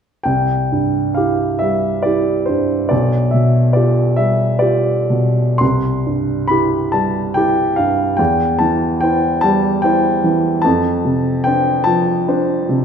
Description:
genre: classical, romantic nocturne for solo piano.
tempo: 59-75 BPM.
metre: 3/4.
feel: rubato.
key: C major.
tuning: A4 = 439 Hz.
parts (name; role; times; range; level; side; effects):
warm baby grand piano; solo; 0.2-12.8 s; B1 to C6; -14 LUFS; equal; none.
room: wet recital hall reverb, RT60 1.4 s.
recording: none.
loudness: -14 LUFS.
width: side -7 dB against mid.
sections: 0.2-12.8 A section.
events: none.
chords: 0.2 C; 2.9 G7/B; 5.6 C; 8.2 C/E; 10.7 Dm7/F.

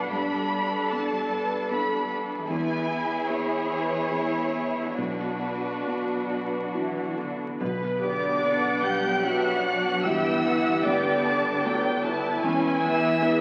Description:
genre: cinematic.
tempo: 67-77 BPM.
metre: 3/4.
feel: rubato.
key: B minor.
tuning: A4 = 436 Hz.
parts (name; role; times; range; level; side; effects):
rich symphonic violin section; melody; 0.0-13.4 s; B4 to G6; -34 LUFS; equal; none.
warm symphonic violin section; second line; 0.0-13.4 s; D4 to A5; -32 LUFS; equal; none.
felt-muted upright piano; accompaniment; 0.0-13.4 s; B1 to D5; -34 LUFS; equal; none.
concert harp; arpeggios; 0.0-13.4 s; E2 to G5; -38 LUFS; equal; none.
warm symphonic cello section; bass; 0.0-13.4 s; E2 to G3; -38 LUFS; equal; none.
warm symphonic viola section; accompaniment; 7.6-13.4 s; F#3 to B4; -31 LUFS; equal; none.
warm symphonic double bass section; bass; 7.6-13.4 s; E1 to B1; -45 LUFS; equal; none.
timpani; percussion; 7.6-8.8 s; B2; -46 LUFS; equal; none.
flute section; second line; 8.0-13.4 s; D5 to G5; -30 LUFS; equal; none.
mellow French horn section; sustained chords; 8.0-13.4 s; D4 to G4; -33 LUFS; equal; none.
room: wet scoring stage reverb, RT60 2.0 s.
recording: very old 78 rpm record, vinyl crackle.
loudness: -26 LUFS.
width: mono.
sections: 0.0-7.6 A section; 7.6-13.4 A section.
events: none.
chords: 0.1 Gadd9; 2.5 E; 5.0 Bm; 10.0 Gadd9; 12.4 E.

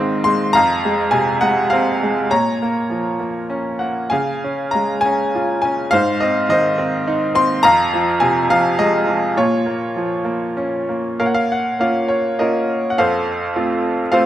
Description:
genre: classical, lyrical solo piano.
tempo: 94-107 BPM.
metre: 3/4.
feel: rubato.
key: Bb harmonic minor from 11.2 s.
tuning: A4 = 439 Hz.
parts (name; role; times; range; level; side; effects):
bright upright piano; solo; 0.0-14.3 s; F2 to C6; -15 LUFS; equal; none.
room: moderate concert hall reverb, RT60 1.8 s.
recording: none.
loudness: -15 LUFS.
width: side -12 dB against mid.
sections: 0.0-11.2 A section; 11.2-14.3 B section.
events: none.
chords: 0.0 Ab; 0.6 Fm; 2.3 Bbm; 4.1 Db; 5.9 Ab; 7.6 Fm; 9.4 Bbm; 13.0 F.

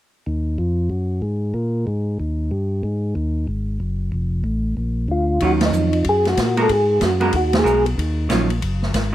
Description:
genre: soul jazz organ trio.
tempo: 187 BPM.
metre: 4/4.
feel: swing 63% on 8ths.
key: Eb minor.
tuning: A4 = 439 Hz.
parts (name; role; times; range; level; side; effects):
tonewheel organ; bass; 0.3-9.1 s; F1 to Bb2; -20 LUFS; equal; overdrive, stopped rotary speaker.
percussive tonewheel organ; melody; 5.1-7.9 s; Eb4 to A4; -19 LUFS; equal; slow rotary speaker, chorus vibrato, plate reverb.
vintage hollow-body jazz guitar; accompaniment; 5.4-9.1 s; Eb3 to Bb4; -21 LUFS; right 3 dB; none.
swinging big-band drum kit; drums; 5.4-9.0 s; hi-hat, kick drum, ride cymbal, snare drum; -24 LUFS; right 1 dB; none.
room: light reverb.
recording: none.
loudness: -18 LUFS.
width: side -13 dB against mid.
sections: 0.3-5.4 A section; 5.4-9.1 B section.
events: band accent 5.6, 7.5.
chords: 0.3 Ebm; 1.6 Absus2; 2.2 Eb; 2.8 Ab5; 4.1 F; 4.8 Bb; 5.4 Ebm9; 6.7 Abm9; 8.0 Ebm9.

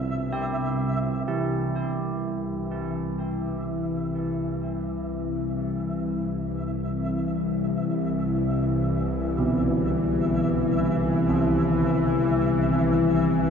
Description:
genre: dark ambient drone.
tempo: free time.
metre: none.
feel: none.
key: C major.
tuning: A4 = 442 Hz.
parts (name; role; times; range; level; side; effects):
dark analog pad; sustained chords; 0.0-13.5 s; C3 to E5; -42 LUFS; right 2 dB; none.
carillon bells; arpeggios; 0.0-13.5 s; B2 to G4; -29 LUFS; right 2 dB; tape echo.
bowed-like drone; drone; 0.0-13.5 s; C2 to E3; -24 LUFS; left 2 dB; built-in reverb.
flickering grainy texture; texture; 0.0-13.5 s; E5; -36 LUFS; right 2 dB; built-in reverb.
room: wet spring reverb, RT60 2.4 s.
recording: echo-heavy mix.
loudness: -23 LUFS.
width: side -7 dB against mid.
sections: 0.0-1.3 A section; 1.3-13.5 B section.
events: fade-in on synth texture 1.3-13.5.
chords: 0.0 Gsus4/C; 1.3 C.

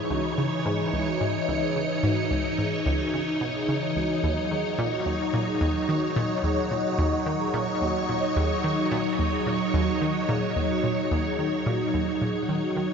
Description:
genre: ambient, sequencer-driven space music.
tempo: 109 BPM.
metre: 4/4.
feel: straight.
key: Eb phrygian.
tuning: A4 = 440 Hz.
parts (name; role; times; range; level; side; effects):
phased string machine; sustained chords; 0.0-12.9 s; Fb3 to Db5; -26 LUFS; equal; ensemble chorus, phaser.
vibraphone with soft mallets; arpeggios; 0.0-12.9 s; Eb4 to Ab4; -31 LUFS; left 2 dB; auto-pan, ping-pong delay.
hollow square pluck; riff; 0.1-12.9 s; Db2 to Eb3; -28 LUFS; equal; chorus, ping-pong delay.
room: wet huge ambient reverb, RT60 7.5 s.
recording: nothing above 7.6 kHz.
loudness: -23 LUFS.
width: side -6 dB against mid.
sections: 0.0-12.9 A section.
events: none.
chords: 0.0 Dbmadd9; 4.2 Ebm7.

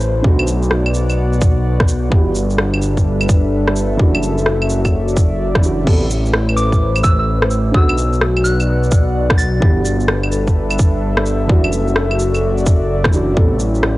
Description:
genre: future garage.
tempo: 128 BPM.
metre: 4/4.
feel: swing 65% on 16ths.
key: unclear.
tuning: A4 = 440 Hz.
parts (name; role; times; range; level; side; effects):
warbly tape-like pad; sustained chords; 0.0-14.0 s; A2 to F#5; -21 LUFS; left 1 dB; chorus, built-in reverb, sidechain pumping.
dark detuned saw bass; bass; 0.0-14.0 s; F#1 to B1; -17 LUFS; equal; sidechain pumping.
organic electronic drum kit; drums; 0.0-14.0 s; claves, crash cymbal, rim click, shaker; -20 LUFS; equal; vintage 12-bit sampler grit.
felt-muted upright piano; accompaniment; 0.2-13.5 s; C3 to A4; -22 LUFS; right 2 dB; vintage 12-bit sampler grit, sidechain pumping, tape echo.
electronic kick drum; drums; 0.2-13.5 s; none; -13 LUFS; equal; vintage 12-bit sampler grit.
soft synth bell; melody; 6.6-9.7 s; D6 to A6; -23 LUFS; equal; chorus, phaser, vintage 12-bit sampler grit, analog delay.
room: light reverb.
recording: dry, gritty hardware recording, transformer saturation.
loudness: -13 LUFS.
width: side -18 dB against mid.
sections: 0.0-14.0 A section.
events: none.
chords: 0.2 Bm; 2.1 G6; 4.0 Dadd9/F#; 5.9 Amadd9; 7.7 Bm; 9.6 G6; 11.5 Dadd9/F#; 13.4 Amadd9.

